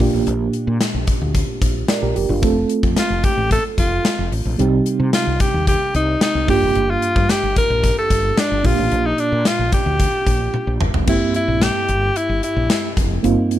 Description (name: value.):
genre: 1980s-style pop.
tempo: 111 BPM.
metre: 4/4.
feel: straight.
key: unclear.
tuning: A4 = 440 Hz.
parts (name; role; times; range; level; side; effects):
mellow FM electric piano; accompaniment; 0.0-13.6 s; G2 to D5; -21 LUFS; right 3 dB; chorus, tremolo.
woody fretless electric bass; bass; 0.0-13.3 s; F1 to C3; -22 LUFS; equal; none.
gated 80s drum kit; drums; 0.0-13.6 s; crash cymbal, hi-hat, kick drum, snare drum, toms; -20 LUFS; left 1 dB; none.
bright alto saxophone; melody; 3.0-12.9 s; D4 to Bb4; -20 LUFS; left 1 dB; none.
room: little or no reverb.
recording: none.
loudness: -15 LUFS.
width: side -12 dB against mid.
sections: 0.0-11.1 A section; 11.1-13.6 B section.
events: drum fill 10.5-11.1.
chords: 0.0 Bb6; 2.4 F; 4.6 Cm; 6.5 Gm7; 8.6 Bb6; 11.1 C7/G.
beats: | 0.27 0.81 1.35 1.89 | 2.43 2.97 3.51 4.05 | 4.59 5.13 5.67 6.21 | 6.75 7.30 7.84 8.38 | 8.92 9.46 10.00 10.54 | 11.08 11.62 12.16 12.70 | 13.24.